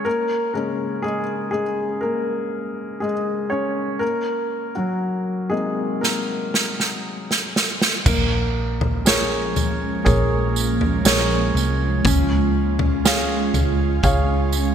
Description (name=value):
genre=pop ballad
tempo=60 BPM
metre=4/4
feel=straight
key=Bb minor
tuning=A4 = 440 Hz
part: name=warm upright piano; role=accompaniment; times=0.0-14.7 s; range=C3 to F5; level=-23 LUFS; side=left 1 dB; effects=none
part: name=unplugged drum kit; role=drums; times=6.0-14.3 s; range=crash cymbal, kick drum, snare drum, toms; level=-21 LUFS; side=right 1 dB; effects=gated reverb
part: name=ethereal airy pad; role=sustained chords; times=9.0-14.7 s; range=F3 to F4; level=-24 LUFS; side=right 3 dB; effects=ensemble chorus, built-in reverb
part: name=vintage muted fingered electric bass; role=bass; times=8.1-14.7 s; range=Bb1 to Db2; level=-23 LUFS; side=right 1 dB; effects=none
part: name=tambourine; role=percussion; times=8.1-14.7 s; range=none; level=-29 LUFS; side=right 11 dB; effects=none
room=moderate lush hall reverb, RT60 2.7 s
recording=bright 1980s-style digital production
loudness=-19 LUFS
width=side -8 dB against mid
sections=0.0-8.1 A section; 8.1-14.7 B section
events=upright piano solo 0.0-8.1; drum fill 6.0-8.1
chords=0.1 Bbm7/Db; 4.0 Cm7b5; 8.1 Bbm7; 12.1 Db